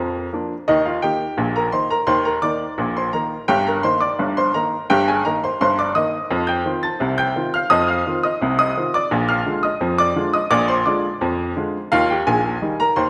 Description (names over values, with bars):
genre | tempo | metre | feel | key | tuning
ragtime piano | 85 BPM | 2/4 | straight | Eb major | A4 = 442 Hz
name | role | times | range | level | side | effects
clear upright piano | solo | 0.0-13.1 s | G1 to A6 | -20 LUFS | equal | none
room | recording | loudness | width
moderate concert hall reverb, RT60 1.9 s | none | -20 LUFS | mono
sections
0.0-13.1 A section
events
none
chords
0.0 Bb; 0.7 Eb; 3.5 Eb/G; 6.3 F7; 9.1 Bb7; 11.9 Eb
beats
| 0.67 1.38 | 2.08 2.78 | 3.49 4.19 | 4.90 5.60 | 6.30 7.00 | 7.71 8.41 | 9.11 9.81 | 10.51 11.21 | 11.92 12.62